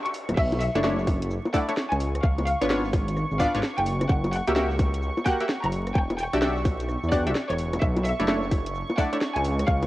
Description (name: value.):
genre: UK garage, two-step garage.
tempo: 129 BPM.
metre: 4/4.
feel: swing 64% on 16ths.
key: B minor.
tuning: A4 = 440 Hz.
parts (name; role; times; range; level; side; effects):
warm analog pad; sustained chords; 0.0-9.9 s; C#6; -37 LUFS; right 2 dB; chorus, sidechain pumping, cassette tape.
bright symphonic violin section; melody; 0.1-9.8 s; C#5 to C#6; -30 LUFS; equal; cassette tape, tape echo.
garage drum kit; drums; 0.1-9.9 s; bongos, crash cymbal, hi-hat, rim click, shaker, snare drum; -31 LUFS; equal; overdrive, cassette tape.
dark detuned saw bass; bass; 0.3-9.9 s; D1 to E2; -27 LUFS; equal; tube saturation.
electronic kick drum; drums; 0.4-9.8 s; none; -24 LUFS; equal; overdrive, cassette tape.
punchy chord stab; stabs; 0.8-9.2 s; A3 to F#5; -28 LUFS; equal; chorus, cassette tape, tape echo.
room: light reverb, digital ambience.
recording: home recording on cassette, vinyl crackle.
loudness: -22 LUFS.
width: side -16 dB against mid.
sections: 0.0-9.9 A section.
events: break 0.0-0.4.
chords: 0.4 Bm11; 2.0 C#7b9; 3.9 F#7b9; 6.0 Em9; 7.8 Bm11.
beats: | 0.37 0.84 1.30 1.77 | 2.23 2.70 3.16 3.63 | 4.09 4.56 5.03 5.49 | 5.96 6.42 6.88 7.35 | 7.82 8.28 8.75 9.21 | 9.68.